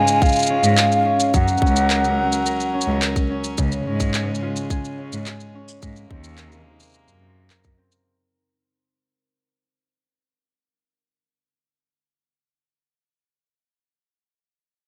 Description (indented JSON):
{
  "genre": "folktronica",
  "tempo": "107 BPM",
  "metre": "4/4",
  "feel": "straight",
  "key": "Db major",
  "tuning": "A4 = 442 Hz",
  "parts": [
    { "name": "breathy mellow concert flute", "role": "melody", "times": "0.0-3.0 s", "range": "F5 to Ab5", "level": "-22 LUFS", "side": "equal", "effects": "digital delay" },
    { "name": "warm string quartet", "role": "sustained chords", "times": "0.0-8.0 s", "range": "C3 to Bb4", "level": "-30 LUFS", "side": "equal", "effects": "none" },
    { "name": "concert harp", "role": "arpeggios", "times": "0.0-12.9 s", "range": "Db3 to Bb4", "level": "-30 LUFS", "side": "equal", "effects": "low-pass filter, digital delay" },
    { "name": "electronic shaker and handclaps", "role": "drums", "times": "0.1-8.0 s", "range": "none", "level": "-26 LUFS", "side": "equal", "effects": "none" },
    { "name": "electronic kick drum", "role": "drums", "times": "0.2-7.8 s", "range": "none", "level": "-23 LUFS", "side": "equal", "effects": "none" },
    { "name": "rich cello", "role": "bass", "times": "0.6-7.7 s", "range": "Db2 to Ab2", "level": "-26 LUFS", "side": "equal", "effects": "none" }
  ],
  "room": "light reverb, small room ambience",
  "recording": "none",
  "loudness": "-19 LUFS",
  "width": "mono",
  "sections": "0.0-8.1 A section",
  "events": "fade-out 0.0-8.1",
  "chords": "0.0 Db; 1.3 Gb; 3.6 Db; 5.8 Abadd9"
}